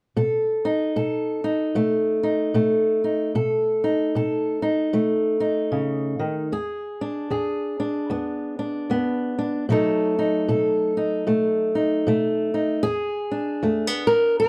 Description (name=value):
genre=acoustic country blues, solo or duo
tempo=76 BPM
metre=4/4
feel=swing 60% on 8ths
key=unclear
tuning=A4 = 440 Hz
part: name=fingerpicked old ladder-braced acoustic guitar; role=solo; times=0.2-14.5 s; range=E2 to B4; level=-23 LUFS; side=equal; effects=none
room=moderate studio reverb, RT60 0.5 s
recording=none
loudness=-23 LUFS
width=mono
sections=0.2-12.8 A section; 12.8-14.5 B section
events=none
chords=0.2 B7; 6.5 E7; 9.7 B7; 12.8 E7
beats=| 0.17 0.96 1.75 2.55 | 3.34 4.13 4.93 5.72 | 6.51 7.30 8.09 8.88 | 9.68 10.47 11.26 12.05 | 12.84 13.62 14.41